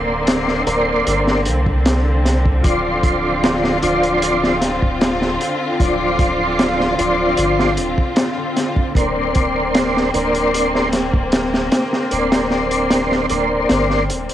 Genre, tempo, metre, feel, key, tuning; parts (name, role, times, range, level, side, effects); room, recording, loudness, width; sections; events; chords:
trip hop; 76 BPM; 4/4; straight; A4 = 441 Hz
tonewheel organ; accompaniment; 0.0-14.1 s; F3 to C5; -18 LUFS; equal; chorus vibrato, slow rotary speaker, tremolo, cassette tape, tape echo, plate reverb
clear studio string section; sustained chords; 0.0-14.3 s; D3 to F4; -21 LUFS; left 1 dB; cassette tape
soft dub sub bass; bass; 0.0-14.3 s; D1 to C2; -23 LUFS; equal
crunchy breakbeat drum kit; drums; 0.3-14.3 s; hi-hat, kick drum, snare drum; -19 LUFS; equal
bowed-like drone; texture; 4.8-14.3 s; C4; -32 LUFS; right 1 dB
light reverb; home recording on cassette; -15 LUFS; side -11 dB against mid
0.0-14.3 A section
0.0 Bbadd9/D; 2.6 Dm7; 9.0 Bbadd9/D